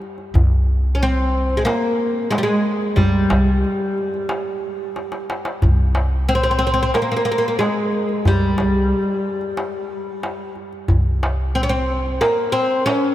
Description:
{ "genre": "Arabic maqam ensemble", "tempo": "91 BPM", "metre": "4/4", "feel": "straight", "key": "C maqam hijaz", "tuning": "A4 = 439 Hz", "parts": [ { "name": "darbuka", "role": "percussion", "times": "0.0-13.0 s", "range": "none", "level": "-22 LUFS", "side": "equal", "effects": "none" }, { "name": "upright bass", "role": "bass", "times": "0.3-12.2 s", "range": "C2", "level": "-19 LUFS", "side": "equal", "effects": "none" }, { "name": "oud", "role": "melody", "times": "0.9-13.1 s", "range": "G3 to Db4+25c", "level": "-19 LUFS", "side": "equal", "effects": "none" } ], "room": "moderate cathedral reverb, RT60 5.6 s", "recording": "in a vast, echoing space", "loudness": "-17 LUFS", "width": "side -13 dB against mid", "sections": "0.0-13.1 A section", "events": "drum fill 5.0-5.6", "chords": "none" }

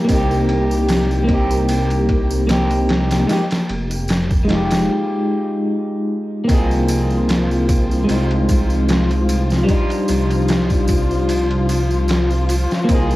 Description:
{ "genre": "trip hop", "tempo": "75 BPM", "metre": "4/4", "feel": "swing 54% on 16ths", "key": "unclear", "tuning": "A4 = 440 Hz", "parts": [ { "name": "electric guitar at the edge of break-up", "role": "accompaniment", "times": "0.0-13.2 s", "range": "G3 to Ab4", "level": "-19 LUFS", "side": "equal", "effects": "harmonic tremolo, vintage 12-bit sampler grit, tape echo" }, { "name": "dark studio string section", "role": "sustained chords", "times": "0.0-13.2 s", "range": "F3 to G4", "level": "-24 LUFS", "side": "left 2 dB", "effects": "vintage 12-bit sampler grit" }, { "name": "dark detuned saw bass", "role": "bass", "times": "0.1-13.2 s", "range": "F1 to C2", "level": "-19 LUFS", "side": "equal", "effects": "none" }, { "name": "trip hop sampler-style drum kit", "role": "drums", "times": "0.1-13.1 s", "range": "kick drum, ride cymbal, snare drum", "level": "-20 LUFS", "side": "equal", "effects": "cassette tape" }, { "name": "tambourine", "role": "percussion", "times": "0.1-13.2 s", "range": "none", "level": "-35 LUFS", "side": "right 2 dB", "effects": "none" } ], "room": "light reverb", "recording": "home recording on cassette", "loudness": "-15 LUFS", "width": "side -17 dB against mid", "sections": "0.0-6.5 A section; 6.5-13.2 B section", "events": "break 4.9-6.5", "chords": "0.1 Cm7; 3.3 Fm9; 6.5 Bb9sus4/C; 8.1 Fm7/C; 9.7 Ebmaj9/C" }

